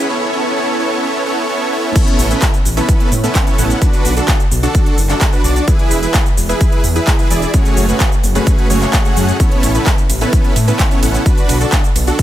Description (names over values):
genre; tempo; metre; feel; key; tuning
EDM, festival progressive house; 129 BPM; 4/4; straight; unclear; A4 = 440 Hz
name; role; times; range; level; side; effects
dense compressed supersaw; riff; 0.0-12.2 s; A3 to F#5; -16 LUFS; right 1 dB; sidechain pumping, tape echo
big-room dance drum kit; drums; 2.0-12.2 s; cabasa, crash cymbal, handclaps, hi-hat, ride cymbal; -20 LUFS; equal; none
electronic kick drum; drums; 2.0-12.2 s; none; -13 LUFS; equal; none
wide detuned saw bass; bass; 2.2-12.1 s; E1 to A2; -16 LUFS; equal; chorus, sidechain pumping
room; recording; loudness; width
digital ambience; high-pass filter; -11 LUFS; side -13 dB against mid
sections
0.0-2.0 A section; 2.0-12.2 B section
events
build-up 0.0-2.0; drop 2.0-12.2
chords
0.1 B9sus4; 2.0 Aadd9; 3.8 Bm; 5.7 E; 7.5 F#madd9; 9.4 Aadd9; 11.3 Bm